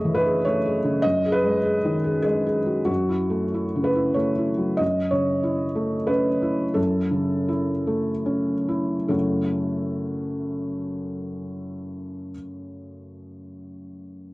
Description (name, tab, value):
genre	neoclassical minimalist piano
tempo	67-101 BPM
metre	3/4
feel	rubato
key	F# dorian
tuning	A4 = 442 Hz
part	felt-muted upright piano	solo	0.0-14.3 s	F#2 to D#5	-22 LUFS	equal	none
room	wet booth ambience, RT60 0.2 s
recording	home recording on cassette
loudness	-21 LUFS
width	side -21 dB against mid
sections	0.0-4.8 A section; 4.8-9.1 B section; 9.1-14.3 C section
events	slowing down 3.8-9.1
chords	0.0 Amaj7/F#; 1.0 G#m/F#; 2.9 F#m7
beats	0.44 | 1.03 1.64 2.25 | 2.89 3.53 4.17 | 4.81 5.45 6.10 | 6.77 7.49 8.27 | 9.12 10.01 10.89 | 11.77 12.65 13.53